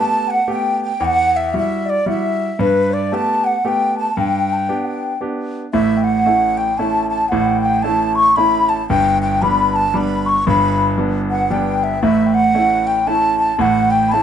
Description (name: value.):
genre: celtic folk, Celtic waltz.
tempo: 114 BPM.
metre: 3/4.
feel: swing 61% on 8ths.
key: G major.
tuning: A4 = 439 Hz.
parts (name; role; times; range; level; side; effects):
baroque flute; melody; 0.0-14.2 s; B4 to C#6; -18 LUFS; right 1 dB; plate reverb.
mellow hollow wooden flute; second line; 0.0-14.2 s; B4 to C#6; -21 LUFS; left 4 dB; none.
bright concert grand piano; accompaniment; 0.0-14.2 s; G1 to G4; -18 LUFS; right 1 dB; none.
room: wet small room reverb, RT60 0.5 s.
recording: nothing above 10.6 kHz.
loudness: -14 LUFS.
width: side -9 dB against mid.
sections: 0.0-5.7 A section; 5.7-14.2 B section.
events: none.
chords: 0.0 Gadd9; 1.0 Emadd9; 2.6 Gadd9; 4.2 G; 5.7 A; 8.9 G; 12.0 A.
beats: 0.49 | 1.01 1.54 2.06 | 2.59 3.11 3.64 | 4.16 4.69 5.21 | 5.74 6.26 6.79 | 7.31 7.83 8.36 | 8.88 9.41 9.93 | 10.46 10.98 11.50 | 12.03 12.55 13.08 | 13.60 14.13.